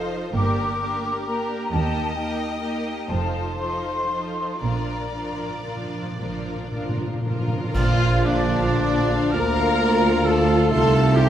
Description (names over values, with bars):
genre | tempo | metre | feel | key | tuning
classical, slow romantic movement for symphony orchestra | 37-45 BPM (dotted quarters) | 6/8 | rubato | Bb major | A4 = 441 Hz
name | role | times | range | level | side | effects
clear symphonic violin section | melody | 0.0-11.3 s | Bb4 to C6 | -34 LUFS | left 2 dB | none
mellow flute section | second line | 0.0-11.3 s | D5 to D6 | -29 LUFS | left 3 dB | none
warm symphonic violin section | second line | 0.0-11.3 s | D4 to C5 | -27 LUFS | left 2 dB | none
warm symphonic viola section | accompaniment | 0.0-11.3 s | F3 to F4 | -30 LUFS | right 1 dB | none
rich symphonic double bass section | bass | 0.0-11.3 s | F1 to Eb2 | -27 LUFS | right 3 dB | none
warm symphonic cello section | bass | 0.0-11.3 s | C2 to Bb2 | -27 LUFS | right 2 dB | none
timpani | percussion | 4.6-7.7 s | Bb2 | -30 LUFS | equal | none
dark French horn section | sustained chords | 7.7-11.3 s | D3 to Bb3 | -27 LUFS | left 2 dB | none
clash cymbals and concert bass drum | percussion | 7.7-9.8 s | none | -28 LUFS | equal | none
mellow clarinet | second line | 7.8-11.3 s | Eb4 to F4 | -28 LUFS | equal | none
warm oboe | second line | 7.8-11.3 s | D4 to Bb4 | -28 LUFS | right 1 dB | none
warm bassoon | accompaniment | 7.8-11.3 s | F3 to A3 | -27 LUFS | right 1 dB | none
mellow tuba | bass | 7.8-11.3 s | Bb1 to D2 | -26 LUFS | right 2 dB | none
room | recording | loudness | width
wet scoring stage reverb, RT60 1.6 s | none | -20 LUFS | side -10 dB against mid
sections
0.0-7.7 A section; 7.7-11.3 A section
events
timpani fill 4.6-7.7; band accent 7.7-8.8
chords
0.3 Gm; 1.7 Eb; 3.1 F7; 4.6 Bb; 9.3 Bb/D; 10.7 F7/C